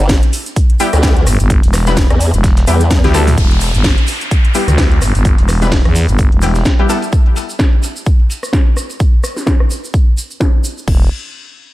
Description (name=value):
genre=bass house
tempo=128 BPM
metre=4/4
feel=swing 57% on 16ths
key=E minor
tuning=A4 = 440 Hz
part: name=orchestra-hit-like synth stab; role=stabs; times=0.0-7.4 s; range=G3 to B4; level=-19 LUFS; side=left 2 dB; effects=built-in reverb, sidechain pumping, ping-pong delay
part: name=formant-sweep wobble bass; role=bass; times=0.0-3.0 s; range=G1 to E2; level=-12 LUFS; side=equal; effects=chorus, overdrive, sidechain pumping
part: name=dusty soul sampler-style drum kit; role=drums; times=0.1-7.0 s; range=hi-hat, shaker, snare drum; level=-29 LUFS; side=right 2 dB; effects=none
part: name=electronic kick drum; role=drums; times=0.1-11.0 s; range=none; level=-11 LUFS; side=equal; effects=none
part: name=house drum kit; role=drums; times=0.1-11.0 s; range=crash cymbal, hi-hat, rim click, snare drum, toms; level=-20 LUFS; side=equal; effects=overdrive, low-pass filter on hats, low-pass filter on snare, low-pass filter on toms, low-pass filter on cymbals, low-pass filter on room
part: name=tube shaker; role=percussion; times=0.1-10.9 s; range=none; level=-27 LUFS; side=right 2 dB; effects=none
part: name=growling FM bass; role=bass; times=1.3-6.6, 10.9-11.1 s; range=E1 to E2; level=-13 LUFS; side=equal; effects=tube saturation, sidechain pumping
part: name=downlifter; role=sound effects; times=3.4-7.1 s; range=none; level=-24 LUFS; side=equal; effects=none
room=little or no reverb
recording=none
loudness=-10 LUFS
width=side -17 dB against mid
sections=0.0-3.4 A section; 3.4-10.9 B section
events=drop 0.0-3.4; drum fill 2.9-3.4; filter sweep on drum 3.4-10.9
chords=0.0 Em; 10.9 N.C.